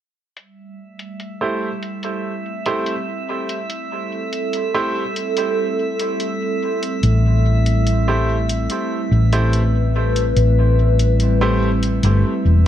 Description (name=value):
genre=ambient dub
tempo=72 BPM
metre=4/4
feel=straight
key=A minor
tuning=A4 = 440 Hz
part: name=warbly tape-like pad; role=sustained chords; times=0.4-12.7 s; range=G3 to B4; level=-23 LUFS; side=equal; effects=chorus, built-in reverb
part: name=electronic hi-hat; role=drums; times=0.4-12.2 s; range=none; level=-31 LUFS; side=left 2 dB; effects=low-pass filter on hats, dub echo
part: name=drifting glass-harmonics texture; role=texture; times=1.0-12.7 s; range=E5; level=-30 LUFS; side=right 2 dB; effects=chorus, built-in reverb
part: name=bright upright piano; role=stabs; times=1.4-11.7 s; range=A3 to C5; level=-25 LUFS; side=right 2 dB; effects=low-pass filter, dub echo
part: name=hollow-body short-scale fingered electric bass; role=bass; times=7.0-12.6 s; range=E1 to A1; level=-15 LUFS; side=equal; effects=tube saturation
room=moderate echo chamber reverb, RT60 2.2 s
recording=none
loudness=-16 LUFS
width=side -11 dB against mid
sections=0.4-12.7 A section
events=none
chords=0.4 Am7